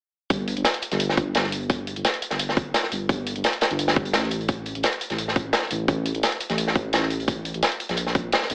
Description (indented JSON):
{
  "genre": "liquid drum and bass",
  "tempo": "172 BPM",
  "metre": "4/4",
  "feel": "straight",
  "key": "unclear",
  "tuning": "A4 = 440 Hz",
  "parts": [
    { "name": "dark detuned saw bass", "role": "bass", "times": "0.3-8.5 s", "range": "G1 to Bb1", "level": "-30 LUFS", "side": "equal", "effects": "none" },
    { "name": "crunchy breakbeat drum kit", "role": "drums", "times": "0.3-8.5 s", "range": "hi-hat, snare drum", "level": "-27 LUFS", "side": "equal", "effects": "high-pass filter on hats, small room ambience, high-pass filter on snare, high-pass filter on room" },
    { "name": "electronic hi-hat", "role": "drums", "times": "0.3-8.5 s", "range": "none", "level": "-34 LUFS", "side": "equal", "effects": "small room ambience" },
    { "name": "electronic kick drum", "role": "drums", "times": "0.3-8.2 s", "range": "none", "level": "-28 LUFS", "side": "equal", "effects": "small room ambience" }
  ],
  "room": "little or no reverb",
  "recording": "AM radio sound",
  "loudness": "-24 LUFS",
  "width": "mono",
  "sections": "0.3-8.5 A section",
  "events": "none",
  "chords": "none"
}